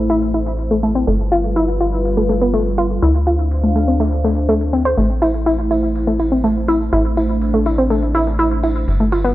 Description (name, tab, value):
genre	melodic techno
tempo	123 BPM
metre	4/4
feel	straight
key	A minor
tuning	A4 = 438 Hz
part	dark analog pad	sustained chords	0.0-9.3 s	G3 to F5	-22 LUFS	equal	chorus
part	tight sequencer bass	bass	0.0-9.3 s	G1 to D2	-19 LUFS	equal	tube saturation
part	analog pluck	arpeggios	0.1-9.3 s	A3 to C5	-17 LUFS	equal	chorus, cassette tape, tape echo
part	dusty soul sampler-style drum kit	drums	0.1-9.3 s	hi-hat, ride cymbal, snare drum	-43 LUFS	right 1 dB	none
part	tambourine	percussion	5.0-9.3 s	none	-50 LUFS	left 1 dB	none
room	light reverb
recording	dry, gritty hardware recording, transformer saturation, low-pass filter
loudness	-14 LUFS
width	side -15 dB against mid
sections	0.0-9.3 A section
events	filter sweep 0.0-9.3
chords	0.0 Am; 1.1 G7; 3.0 Dm7; 5.0 Am